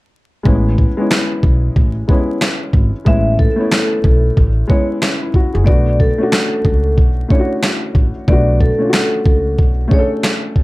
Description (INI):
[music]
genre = hip hop, boom-bap hip-hop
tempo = 92 BPM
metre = 4/4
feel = swing 60% on 16ths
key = A major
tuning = A4 = 440 Hz
[part]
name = dark upright piano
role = accompaniment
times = 0.4-10.6 s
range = G#3 to A4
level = -19 LUFS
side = left 1 dB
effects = cassette tape, high-pass filter, low-pass filter
[part]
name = upright bass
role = bass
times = 0.5-9.8 s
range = F#1 to C#2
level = -16 LUFS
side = equal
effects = none
[part]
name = boom bap sampler-style drum kit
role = drums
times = 0.5-10.6 s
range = kick drum, snare drum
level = -14 LUFS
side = equal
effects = none
[part]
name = vibraphone with medium mallets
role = melody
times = 3.1-10.1 s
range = A4 to E5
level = -20 LUFS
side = equal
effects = high-pass filter, low-pass filter, plate reverb, ping-pong delay
[sound]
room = little or no reverb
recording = vinyl crackle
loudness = -12 LUFS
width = side -20 dB against mid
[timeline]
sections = 0.5-10.6 A section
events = hi-hats muted 0.5-10.6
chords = 0.5 Amaj7; 5.7 Bm7